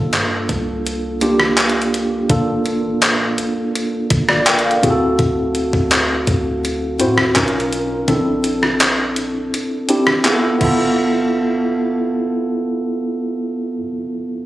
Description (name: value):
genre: contemporary R&B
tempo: 83 BPM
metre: 4/4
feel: straight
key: G dorian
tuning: A4 = 441 Hz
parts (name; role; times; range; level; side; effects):
- mellow tine electric piano; accompaniment; 0.0-14.5 s; Bb3 to G5; -17 LUFS; equal; fast stereo tremolo
- warm 808-style bass; bass; 0.0-13.8 s; G1 to A2; -26 LUFS; equal; none
- gated 80s digital drum machine; drums; 0.1-10.8 s; crash cymbal, handclaps, hi-hat, kick drum, rim click; -17 LUFS; equal; gated reverb, overdrive
room: light reverb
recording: recorded on a phone in the room, studio reverb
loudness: -15 LUFS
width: side -15 dB against mid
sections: 0.0-11.0 A section; 11.0-13.9 B section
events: kick muted 9.5-11.0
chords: 0.0 C13sus4; 2.3 Gm9; 4.8 D9; 7.4 Bmaj9#11; 8.1 Bbmaj9#11; 10.3 Fmaj7#11/B; 10.6 G13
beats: 0.13 0.85 1.58 | 2.30 3.02 3.75 4.47 | 5.19 5.91 6.64 7.36 | 8.08 8.80 9.53 10.25 | 10.97 11.70 12.42 13.14